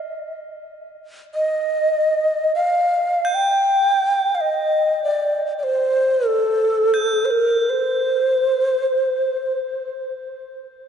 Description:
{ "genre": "world meditative, free-time meditation music", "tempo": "free time", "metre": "none", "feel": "none", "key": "C dorian", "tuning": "A4 = 440 Hz", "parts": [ { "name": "crotales", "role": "texture", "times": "0.0-10.9 s", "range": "F6 to Eb7", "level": "-32 LUFS", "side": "right 3 dB", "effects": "none" }, { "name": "breathy mellow Native American-style cedar flute", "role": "melody", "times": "1.3-9.6 s", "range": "A4 to G5", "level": "-18 LUFS", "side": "equal", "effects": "diffuse ambient delay" } ], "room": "wet church reverb, RT60 3.1 s", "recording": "nothing above 10.7 kHz", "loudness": "-17 LUFS", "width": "side -8 dB against mid", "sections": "0.0-10.9 A section", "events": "none", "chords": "none", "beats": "free time" }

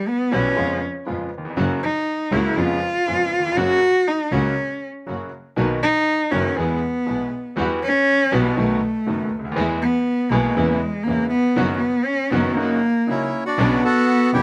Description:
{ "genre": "tango", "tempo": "120 BPM", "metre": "4/4", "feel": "rubato", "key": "unclear", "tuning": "A4 = 439 Hz", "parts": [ { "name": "warm cello", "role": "second line", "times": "0.0-14.4 s", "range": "G#3 to F#4", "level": "-22 LUFS", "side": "equal", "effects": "none" }, { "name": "bright concert grand piano", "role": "accompaniment", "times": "0.3-14.4 s", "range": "F#1 to G#4", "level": "-27 LUFS", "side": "equal", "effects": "slapback echo" }, { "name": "dark studio string section", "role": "stabs", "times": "0.3-14.4 s", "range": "G3 to F#4", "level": "-33 LUFS", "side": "equal", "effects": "none" }, { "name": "dark double bass", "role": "bass", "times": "0.3-14.4 s", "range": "F#1 to E#2", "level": "-28 LUFS", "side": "equal", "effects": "none" }, { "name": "bandoneon", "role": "melody", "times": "13.1-14.4 s", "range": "C#4 to A4", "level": "-23 LUFS", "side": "equal", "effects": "slapback echo" } ], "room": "little or no reverb", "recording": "recorded outdoors, with no room sound", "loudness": "-20 LUFS", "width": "mono", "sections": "0.0-13.6 A section", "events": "cello solo 0.0-13.6", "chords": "0.0 Emadd9; 0.6 C#7/E#; 1.6 F#; 2.6 C#7/E#; 3.6 F#; 5.6 Bmaj7; 6.6 E; 7.6 Emadd9; 8.6 B7; 9.6 E; 10.6 C#m7/E; 11.6 B/F#; 12.6 F#6; 13.6 Bmadd9", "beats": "0.08 0.58 1.08 | 1.57 2.07 2.57 3.07 | 3.57 4.07 4.57 5.07 | 5.57 6.08 6.58 7.08 | 7.58 8.07 8.57 9.07 | 9.57 10.07 10.57 11.07 | 11.57 12.07 12.57 13.07 | 13.58 14.08" }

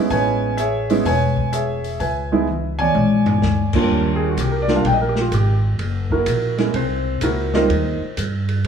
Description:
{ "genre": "jazz piano trio", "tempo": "127 BPM", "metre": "4/4", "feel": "swing 67% on 8ths", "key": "Eb major from 3.9 s", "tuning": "A4 = 442 Hz", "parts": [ { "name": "warm concert grand piano", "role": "melody", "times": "0.0-8.0 s", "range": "Eb2 to G#5", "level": "-19 LUFS", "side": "right 2 dB", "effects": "none" }, { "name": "upright bass", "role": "bass", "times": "0.1-8.7 s", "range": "E1 to G2", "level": "-22 LUFS", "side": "equal", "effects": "none" }, { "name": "open jazz drum kit", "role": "drums", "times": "0.1-8.7 s", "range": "crash cymbal, hi-hat, kick drum, ride cymbal, snare drum, toms", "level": "-24 LUFS", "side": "left 3 dB", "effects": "none" } ], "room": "light reverb", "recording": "none", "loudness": "-17 LUFS", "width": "side -7 dB against mid", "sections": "0.0-3.9 A section; 3.9-8.7 B section", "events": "drum fill 2.5-3.4; grand piano solo 3.9-8.7", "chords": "0.1 Amaj9; 2.0 Dbm7; 3.0 Bb7#9; 3.9 Ebmaj9; 5.8 Gb7; 7.7 Abmaj9 (rootless)", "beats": "| 0.11 0.58 1.05 1.53 | 2.00 2.48 2.95 3.42 | 3.90 4.37 4.85 5.32 | 5.79 6.27 6.74 7.22 | 7.69 8.17 8.64" }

